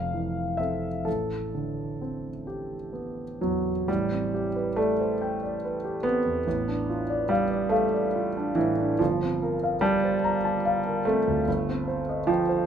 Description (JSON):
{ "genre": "classical, impressionist solo piano", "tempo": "40-50 BPM (dotted quarters)", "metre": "6/8", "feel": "rubato", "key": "A minor", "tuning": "A4 = 440 Hz", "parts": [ { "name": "warm concert grand piano", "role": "solo", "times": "0.0-12.7 s", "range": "F1 to Bb5", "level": "-24 LUFS", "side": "right 1 dB", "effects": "none" } ], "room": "light reverb", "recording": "minimal, uncompressed stereo recording", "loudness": "-24 LUFS", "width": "side -8 dB against mid", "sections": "0.0-3.9 A section; 3.9-12.7 B section", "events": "none", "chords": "0.0 Fmaj7; 1.1 Am11; 6.5 Dm6/A; 9.0 Gm11; 11.5 Cm6/G" }